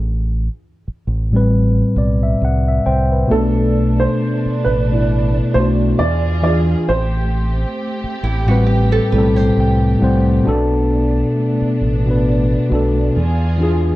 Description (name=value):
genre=lo-fi hip hop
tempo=67 BPM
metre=4/4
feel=swing 56% on 16ths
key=A minor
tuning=A4 = 440 Hz
part: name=deep dub fingered electric bass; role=bass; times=0.0-13.9 s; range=A1 to E2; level=-18 LUFS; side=equal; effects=none
part: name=mellow tine electric piano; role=accompaniment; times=1.3-14.0 s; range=A2 to G5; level=-16 LUFS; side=left 1 dB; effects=low-pass filter
part: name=dark upright piano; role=melody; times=3.3-8.2 s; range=A4 to D5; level=-22 LUFS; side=right 3 dB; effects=low-pass filter, plate reverb, analog delay
part: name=warm studio string section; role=sustained chords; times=3.3-14.0 s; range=B2 to G#4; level=-26 LUFS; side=right 2 dB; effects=low-pass filter, plate reverb
part: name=nylon-string guitar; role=second line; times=8.2-10.4 s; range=E4 to C5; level=-23 LUFS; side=right 4 dB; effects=low-pass filter, plate reverb, analog delay
room=moderate studio reverb, RT60 0.6 s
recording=dark, warm production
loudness=-14 LUFS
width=side -16 dB against mid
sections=0.0-3.3 A section; 3.3-14.0 A section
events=tine electric piano fill 1.5-3.3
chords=0.0 Am9; 3.3 Bm7; 6.0 E7b9; 6.9 Am9; 10.5 Bm7; 13.2 E7b9